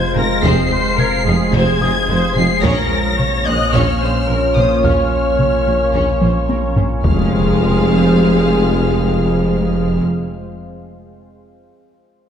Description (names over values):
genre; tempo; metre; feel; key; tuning
cinematic, hybrid orchestral and electronic film score; 109 BPM; 4/4; straight; F minor; A4 = 439 Hz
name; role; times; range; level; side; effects
dark symphonic violin section; melody; 0.0-10.0 s; Eb6 to C7; -23 LUFS; left 4 dB; none
warm symphonic viola section; accompaniment; 0.0-10.0 s; Ab3 to Eb5; -23 LUFS; left 2 dB; none
evolving wavetable pad; sustained chords; 0.0-10.0 s; Ab3 to Db5; -22 LUFS; equal; phaser, built-in reverb
mellow French horn section; sustained chords; 0.0-10.0 s; Ab3 to Db5; -22 LUFS; left 2 dB; none
pure sine sub bass; bass; 0.0-10.0 s; F1 to Bb1; -23 LUFS; equal; none
felt-muted upright piano; texture; 0.0-7.1 s; Bb5 to Bb6; -32 LUFS; left 1 dB; tape echo
rich symphonic violin section; second line; 0.2-10.0 s; Ab3 to F5; -26 LUFS; left 1 dB; none
dark studio double bass section; bass; 0.2-10.0 s; F1 to Bb1; -22 LUFS; right 3 dB; none
dark tuba; bass; 0.2-10.0 s; F1 to Bb1; -22 LUFS; right 2 dB; none
rich symphonic cello section; bass; 0.2-10.0 s; F2 to Bb2; -21 LUFS; right 2 dB; none
taiko ensemble; drums; 0.2-8.1 s; none; -21 LUFS; equal; none
impact; sound effects; 7.0-10.7 s; none; -24 LUFS; left 1 dB; none
room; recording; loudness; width
wet scoring stage reverb, RT60 1.9 s; none; -13 LUFS; side -8 dB against mid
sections
0.0-7.0 A section; 7.0-9.2 B section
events
drum fill 6.2-7.0; impact 7.0-9.2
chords
0.0 Fm; 2.6 Bbmadd9; 7.0 Fm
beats
| 0.44 0.99 1.54 2.09 | 2.64 3.19 3.74 4.29 | 4.84 5.39 5.94 6.49 | 7.04 7.59 8.15 8.70